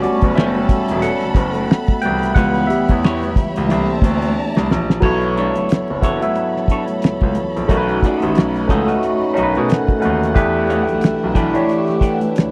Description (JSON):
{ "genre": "R&B, neo-soul", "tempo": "90 BPM", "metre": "4/4", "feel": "swing 57% on 16ths", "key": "B minor", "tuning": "A4 = 440 Hz", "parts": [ { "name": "barky tine electric piano", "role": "accompaniment", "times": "0.0-12.5 s", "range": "E3 to G5", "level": "-20 LUFS", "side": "equal", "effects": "overdrive, phaser" }, { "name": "warm studio string section", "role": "sustained chords", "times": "0.0-12.5 s", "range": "D4 to B5", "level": "-31 LUFS", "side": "equal", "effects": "none" }, { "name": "clear trombone section", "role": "stabs", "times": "0.0-4.7 s", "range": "E3 to C#4", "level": "-29 LUFS", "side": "equal", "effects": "none" }, { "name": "cloth-damped thuddy drum kit", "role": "drums", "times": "0.0-12.5 s", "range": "crash cymbal, finger snaps, hi-hat, kick drum, snare drum", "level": "-18 LUFS", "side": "equal", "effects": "none" }, { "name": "congas", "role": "percussion", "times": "0.0-12.5 s", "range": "none", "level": "-31 LUFS", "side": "equal", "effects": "none" }, { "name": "clear concert grand piano", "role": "bass", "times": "0.2-12.5 s", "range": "E1 to B2", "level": "-24 LUFS", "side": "equal", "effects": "transformer saturation" }, { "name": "electric guitar through a small old amp", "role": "second line", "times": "0.4-12.2 s", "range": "B3 to F#5", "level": "-29 LUFS", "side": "equal", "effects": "phaser" } ], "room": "small room ambience", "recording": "dry, close 1970s-style studio recording", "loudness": "-17 LUFS", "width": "mono", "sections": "0.0-5.0 A section; 5.0-12.5 B section", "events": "tine electric piano solo 0.0-5.0; drum fill 4.4-5.0", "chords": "0.0 Gmaj9; 2.4 C#m7b5; 3.7 C13; 5.0 Bm9; 7.7 B7; 10.4 Em9", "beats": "0.36 1.02 1.69 | 2.36 3.02 3.69 4.36 | 5.03 5.69 6.36 7.03 | 7.69 8.36 9.03 9.69 | 10.36 11.03 11.69 12.36" }